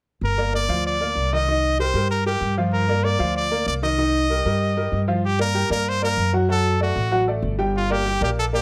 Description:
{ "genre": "latin, salsa", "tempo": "192 BPM", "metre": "4/4", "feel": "straight", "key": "G minor", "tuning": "A4 = 439 Hz", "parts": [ { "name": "brilliant trumpet", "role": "melody", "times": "0.2-8.6 s", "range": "F4 to Eb5", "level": "-26 LUFS", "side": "equal", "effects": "plate reverb" }, { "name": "upright bass", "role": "bass", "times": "0.2-8.6 s", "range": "G1 to G2", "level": "-26 LUFS", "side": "equal", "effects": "none" }, { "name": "bright upright piano", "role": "accompaniment", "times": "0.4-8.6 s", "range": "Eb3 to G5", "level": "-27 LUFS", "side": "equal", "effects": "none" } ], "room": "light reverb", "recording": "close, detailed microphones", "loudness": "-21 LUFS", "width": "mono", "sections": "0.2-5.2 A section; 5.2-8.6 B section", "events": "none", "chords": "0.2 Gm7; 1.5 Cm7; 2.7 Gm7; 4.0 Cm7; 5.2 Gm; 6.5 D; 7.7 Gm", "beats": "| 0.22 0.53 0.85 1.16 | 1.48 1.79 2.10 2.42 | 2.73 3.04 3.36 3.67 | 3.98 4.30 4.61 4.92 | 5.24 5.55 5.86 6.17 | 6.49 6.80 7.11 7.43 | 7.74 8.05 8.37" }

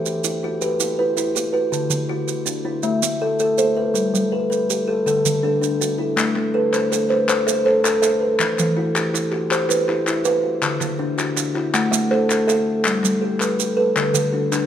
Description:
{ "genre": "southern african traditional, mbira-style interlocking cycle", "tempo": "108 BPM (dotted quarters)", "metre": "12/8", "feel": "straight", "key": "A dorian", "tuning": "A4 = 440 Hz", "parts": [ { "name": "kalimba", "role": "arpeggios", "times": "0.0-14.7 s", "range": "D3 to F#5", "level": "-20 LUFS", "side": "left 2 dB", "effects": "none" }, { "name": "kalimba", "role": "arpeggios", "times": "0.0-14.7 s", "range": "D3 to E5", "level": "-24 LUFS", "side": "right 5 dB", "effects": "none" }, { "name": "maracas", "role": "percussion", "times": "0.1-14.7 s", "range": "none", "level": "-26 LUFS", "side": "right 10 dB", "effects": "none" }, { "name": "group handclap", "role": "percussion", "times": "6.2-14.7 s", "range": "none", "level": "-25 LUFS", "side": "left 4 dB", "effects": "none" } ], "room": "moderate recital hall reverb, RT60 1.6 s", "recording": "none", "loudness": "-17 LUFS", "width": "side -9 dB against mid", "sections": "0.0-6.2 A section; 6.2-14.7 B section", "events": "none", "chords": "0.0 Em; 1.7 D; 2.8 Am; 4.0 G; 5.1 D; 6.2 Am; 8.4 Em; 10.6 D; 11.7 Am; 12.8 G; 14.0 D", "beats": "0.06 0.62 1.17 | 1.73 2.29 2.84 3.40 | 3.96 4.51 5.07 5.62 | 6.18 6.73 7.29 7.84 | 8.40 8.95 9.51 10.06 | 10.62 11.18 11.73 12.29 | 12.85 13.41 13.96 14.52" }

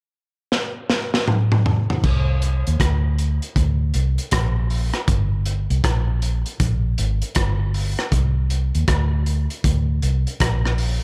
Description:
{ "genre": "roots reggae", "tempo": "79 BPM", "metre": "4/4", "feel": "swing 63% on 16ths", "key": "unclear", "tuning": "A4 = 440 Hz", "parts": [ { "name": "crunchy breakbeat drum kit", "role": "drums", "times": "0.5-11.0 s", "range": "crash cymbal, hi-hat, kick drum, rim click, snare drum, toms", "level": "-24 LUFS", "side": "equal", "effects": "none" }, { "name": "vintage muted fingered electric bass", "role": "bass", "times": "2.0-11.0 s", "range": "G1 to Eb2", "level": "-22 LUFS", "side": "equal", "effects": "none" } ], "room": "little or no reverb", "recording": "none", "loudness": "-21 LUFS", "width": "mono", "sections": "0.0-2.0 A section; 2.0-11.0 B section", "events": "drum fill 0.5-2.0", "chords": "none", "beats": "0.52 1.28 | 2.04 2.80 3.56 4.32 | 5.08 5.84 6.60 7.36 | 8.12 8.88 9.64 10.40" }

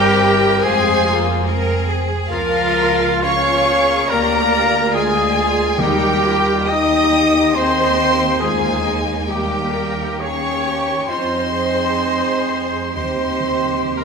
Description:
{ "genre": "classical", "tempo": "58-72 BPM", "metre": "4/4", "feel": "rubato", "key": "unclear", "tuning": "A4 = 440 Hz", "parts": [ { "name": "rich chamber violin section", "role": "melody", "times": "0.0-14.0 s", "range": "F5 to Eb6", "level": "-22 LUFS", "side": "left 4 dB", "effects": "none" }, { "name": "bright clarinet", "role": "second line", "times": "0.0-14.0 s", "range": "F4 to Eb5", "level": "-26 LUFS", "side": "left 2 dB", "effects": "none" }, { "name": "clear chamber violin section", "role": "second line", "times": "0.0-14.0 s", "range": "G3 to Ab4", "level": "-28 LUFS", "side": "left 6 dB", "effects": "none" }, { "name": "hollow concert flute", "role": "second line", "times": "0.0-14.0 s", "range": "Bb4 to G5", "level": "-25 LUFS", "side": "left 2 dB", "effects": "none" }, { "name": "mellow cor anglais", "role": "second line", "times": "0.0-14.0 s", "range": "F4 to Eb5", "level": "-25 LUFS", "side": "right 1 dB", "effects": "none" }, { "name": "clear studio viola section", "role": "accompaniment", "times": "0.0-14.0 s", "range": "F4 to Eb5", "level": "-24 LUFS", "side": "right 3 dB", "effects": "none" }, { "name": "mellow French horn section", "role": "sustained chords", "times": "0.0-14.0 s", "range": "F3 to Eb4", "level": "-22 LUFS", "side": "left 1 dB", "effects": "none" }, { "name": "mellow trumpet", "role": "stabs", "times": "0.0-14.0 s", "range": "F4 to Eb5", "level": "-24 LUFS", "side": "right 1 dB", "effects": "none" }, { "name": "dark chamber double bass section", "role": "bass", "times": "0.0-14.0 s", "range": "F1 to F2", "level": "-25 LUFS", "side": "right 3 dB", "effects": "none" }, { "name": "rich studio cello section", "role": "bass", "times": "0.0-14.0 s", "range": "Eb4 to Bb4", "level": "-26 LUFS", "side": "right 3 dB", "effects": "none" }, { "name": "timpani", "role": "percussion", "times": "5.8-7.1, 13.0-14.0 s", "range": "Eb3", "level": "-27 LUFS", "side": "right 1 dB", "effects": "none" } ], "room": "wet scoring stage reverb, RT60 1.6 s", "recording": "minimal, uncompressed stereo recording", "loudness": "-14 LUFS", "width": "side -5 dB against mid", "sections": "0.0-14.0 A section", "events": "timpani fill 13.0-14.0", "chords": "0.0 C7/G; 0.6 Fm; 2.3 Bbm/Db; 4.1 Bb7/D; 5.8 Eb; 9.3 Eb7; 11.1 Fm7; 13.0 Eb", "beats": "0.63 1.48 | 2.31 3.23 4.09 4.93 | 5.78 6.69 7.55 8.41 | 9.27 10.21 11.09 12.00 | 12.96 13.99" }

